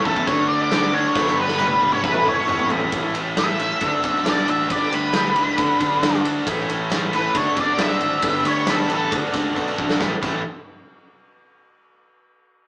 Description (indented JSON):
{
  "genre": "classic rock",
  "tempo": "136 BPM",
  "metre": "4/4",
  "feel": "straight",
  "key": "A mixolydian",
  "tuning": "A4 = 440 Hz",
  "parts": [
    { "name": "picked steel-string acoustic guitar", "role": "accompaniment", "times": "0.0-10.4 s", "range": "A2 to A4", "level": "-33 LUFS", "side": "equal", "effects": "none" },
    { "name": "distorted electric guitar", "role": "riff", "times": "0.0-10.4 s", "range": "A2 to B4", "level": "-25 LUFS", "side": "right 1 dB", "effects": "overdrive" },
    { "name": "overdriven semi-hollow guitar", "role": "riff", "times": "0.0-10.4 s", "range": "G2 to D4", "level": "-25 LUFS", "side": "left 1 dB", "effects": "none" },
    { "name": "octave-fuzz lead guitar", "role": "melody", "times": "0.1-9.1 s", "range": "A4 to E5", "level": "-20 LUFS", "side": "equal", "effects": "wah, distortion" },
    { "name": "growling fingered electric bass", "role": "bass", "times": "0.1-10.4 s", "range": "F#1 to D3", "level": "-30 LUFS", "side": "equal", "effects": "overdrive" },
    { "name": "big rock drum kit", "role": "drums", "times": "0.1-10.3 s", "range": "crash cymbal, kick drum, ride cymbal, snare drum, toms", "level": "-24 LUFS", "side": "equal", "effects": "none" },
    { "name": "tambourine", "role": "percussion", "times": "0.7-10.4 s", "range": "none", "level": "-44 LUFS", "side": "left 1 dB", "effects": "none" }
  ],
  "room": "moderate studio reverb, RT60 0.7 s",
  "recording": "band playing live in one room, small speaker sound",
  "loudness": "-17 LUFS",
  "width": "side -26 dB against mid",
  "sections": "0.0-2.9 A section; 2.9-10.0 B section; 10.0-11.8 C section",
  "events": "drum fill 1.2-2.9, 9.6-10.0; lead electric guitar solo 2.9-10.0",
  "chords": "0.3 D6; 1.2 Gadd9; 2.0 A; 3.8 D6; 4.7 Gadd9; 5.6 D6; 6.5 A; 7.4 D6; 8.2 Gadd9; 9.1 D6; 10.0 A"
}